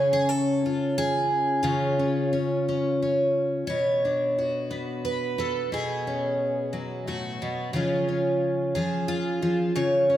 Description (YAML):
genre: folk, solo fingerstyle acoustic guitar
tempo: 89 BPM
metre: 3/4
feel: straight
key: unclear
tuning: A4 = 440 Hz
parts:
  - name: picked twelve-string acoustic guitar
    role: solo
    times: 0.0-10.2 s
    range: A2 to C#5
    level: -23 LUFS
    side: equal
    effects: none
room: light reverb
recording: none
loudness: -23 LUFS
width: side -12 dB against mid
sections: 0.0-3.7 A section; 3.7-10.2 B section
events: none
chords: 0.0 C#; 3.7 Bmadd9; 7.7 C#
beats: 0.30 0.97 | 1.64 2.31 2.99 | 3.68 4.36 5.04 | 5.72 6.40 7.07 | 7.75 8.42 9.10 | 9.77